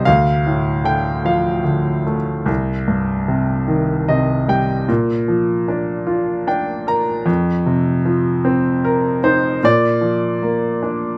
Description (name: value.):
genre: classical, lyrical solo piano.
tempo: 50 BPM (dotted quarters).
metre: 6/8.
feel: rubato.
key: Bb major.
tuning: A4 = 439 Hz.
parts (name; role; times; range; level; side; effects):
clear baby grand piano; solo; 0.0-11.2 s; C2 to Bb5; -18 LUFS; equal; none.
room: light reverb.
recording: none.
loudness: -18 LUFS.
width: mono.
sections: 0.0-11.2 A section.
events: none.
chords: 0.1 Dm; 2.5 Cm; 4.9 Bb; 7.3 F5; 9.6 Bb.